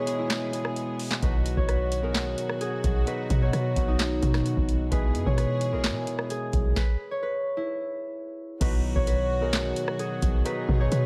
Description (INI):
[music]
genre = hip hop, trap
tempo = 130 BPM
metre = 4/4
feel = half-time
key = B major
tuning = A4 = 439 Hz
[part]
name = concert harp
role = melody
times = 0.0-11.1 s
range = D#4 to C#5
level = -33 LUFS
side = equal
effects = none
[part]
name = overdriven tine electric piano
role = accompaniment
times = 0.0-11.1 s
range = B2 to G#4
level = -35 LUFS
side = equal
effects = subtle chorus
[part]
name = warm studio string section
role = sustained chords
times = 0.0-11.1 s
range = D#3 to G#4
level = -40 LUFS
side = equal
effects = none
[part]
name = booming analog drum machine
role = drums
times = 0.1-11.0 s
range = crash cymbal, handclaps, hi-hat, kick drum, rim click, snare drum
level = -29 LUFS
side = equal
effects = none
[part]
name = warm 808-style bass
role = bass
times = 1.2-11.1 s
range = A#1 to B2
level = -30 LUFS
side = equal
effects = none
[sound]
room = digital ambience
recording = none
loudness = -27 LUFS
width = mono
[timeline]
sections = 0.0-8.6 A section; 8.6-11.1 B section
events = break 0.0-1.2; stop 6.8-8.6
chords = 0.0 E/B; 1.2 B; 4.9 E; 8.6 B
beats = 0.30 0.76 | 1.23 1.69 2.15 2.61 | 3.07 3.53 3.99 4.46 | 4.92 5.38 5.84 6.30 | 6.76 7.22 7.69 8.15 | 8.61 9.07 9.53 9.99 | 10.46 10.92